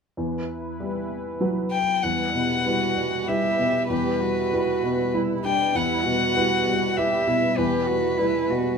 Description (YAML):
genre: neoclassical piano and strings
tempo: 97 BPM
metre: 3/4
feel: rubato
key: E minor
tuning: A4 = 442 Hz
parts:
  - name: felt-muted upright piano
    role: accompaniment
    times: 0.2-8.8 s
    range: E2 to B4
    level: -26 LUFS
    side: left 1 dB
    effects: none
  - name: warm analog pad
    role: sustained chords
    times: 0.2-8.8 s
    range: E3 to B4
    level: -32 LUFS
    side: right 1 dB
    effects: chorus
  - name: rich violin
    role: melody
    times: 1.7-8.8 s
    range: B4 to G5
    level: -24 LUFS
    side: left 3 dB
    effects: none
  - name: dark cello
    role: second line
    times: 2.7-8.8 s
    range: D4 to G4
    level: -27 LUFS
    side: right 9 dB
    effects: none
room: moderate studio ambience, RT60 0.4 s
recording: minimal, uncompressed stereo recording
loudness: -21 LUFS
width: side -6 dB against mid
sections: 0.2-2.0 A section; 2.0-8.8 B section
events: none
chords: 0.2 Emadd9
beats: | 0.18 0.80 1.41 | 2.04 2.67 3.29 | 3.91 4.54 5.16 | 5.76 6.37 6.98 | 7.58 8.18